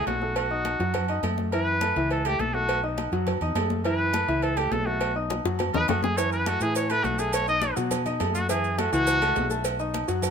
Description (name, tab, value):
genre	latin, salsa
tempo	207 BPM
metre	4/4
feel	straight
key	unclear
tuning	A4 = 437 Hz
part	clear trumpet	melody	0.0-9.5 s	F#4 to D#5	-27 LUFS	equal	none
part	warm concert grand piano	accompaniment	0.0-10.3 s	E3 to D#6	-29 LUFS	left 2 dB	none
part	fretless electric bass	bass	0.0-10.3 s	B1 to B2	-30 LUFS	equal	none
part	congas	percussion	0.1-10.3 s	none	-35 LUFS	left 6 dB	none
part	cowbell and bongos	percussion	0.1-10.3 s	none	-33 LUFS	left 1 dB	none
part	timbales and agogo bells	percussion	0.1-10.3 s	none	-32 LUFS	right 9 dB	none
part	maracas	percussion	6.2-10.3 s	none	-37 LUFS	right 9 dB	none
room	light reverb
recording	minimal, uncompressed stereo recording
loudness	-23 LUFS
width	side -7 dB against mid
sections	0.0-10.3 A section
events	trumpet solo 0.0-10.3; drum fill 5.3-6.2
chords	0.4 B7; 1.5 F#m7; 2.7 B7; 3.9 F#m7; 5.0 B7; 6.2 F#m7; 7.3 B7; 8.5 F#m7; 9.7 B7